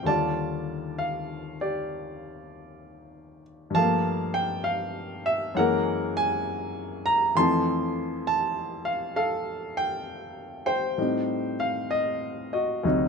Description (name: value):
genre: solo jazz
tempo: 66 BPM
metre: 4/4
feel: swing 67% on 8ths, rubato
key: F major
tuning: A4 = 439 Hz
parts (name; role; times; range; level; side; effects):
- clear baby grand piano; solo; 0.0-13.1 s; D2 to C6; -25 LUFS; equal; none
room: moderate studio reverb, RT60 0.6 s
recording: none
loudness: -24 LUFS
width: side -5 dB against mid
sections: 0.0-13.1 A section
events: none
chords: 0.1 Ebmaj9; 3.7 Gm9; 5.6 Gb9; 7.4 Fmaj7; 11.0 Am7b5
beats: | 0.06 0.99 1.91 2.83 | 3.75 4.66 5.57 6.48 | 7.37 8.27 9.17 10.07 | 10.98 11.90 12.84